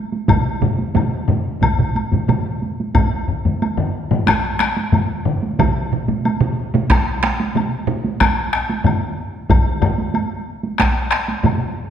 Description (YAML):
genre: japanese traditional, taiko drum ensemble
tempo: 92 BPM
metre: 4/4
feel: straight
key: none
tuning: none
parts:
  - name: solo taiko drums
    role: percussion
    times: 0.1-11.6 s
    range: none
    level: -23 LUFS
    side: right 4 dB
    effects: none
  - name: taiko ensemble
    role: percussion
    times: 0.3-11.6 s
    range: none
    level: -19 LUFS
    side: left 3 dB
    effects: none
  - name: taiko ensemble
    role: percussion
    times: 0.3-11.6 s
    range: none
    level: -21 LUFS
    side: right 3 dB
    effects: none
  - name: taiko ensemble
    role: percussion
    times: 0.3-10.9 s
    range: none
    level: -20 LUFS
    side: equal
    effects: none
  - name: woodblock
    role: percussion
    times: 0.3-11.6 s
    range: none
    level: -25 LUFS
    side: left 4 dB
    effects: none
room: wet scoring stage reverb, RT60 1.6 s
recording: none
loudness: -16 LUFS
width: side -9 dB against mid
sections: 0.0-3.0 A section; 3.0-11.9 B section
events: speeding up 0.0-11.9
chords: none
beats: | 0.29 0.96 1.63 2.29 | 2.95 3.62 4.28 4.93 | 5.59 6.25 6.90 7.56 | 8.21 8.86 9.51 10.15 | 10.80 11.45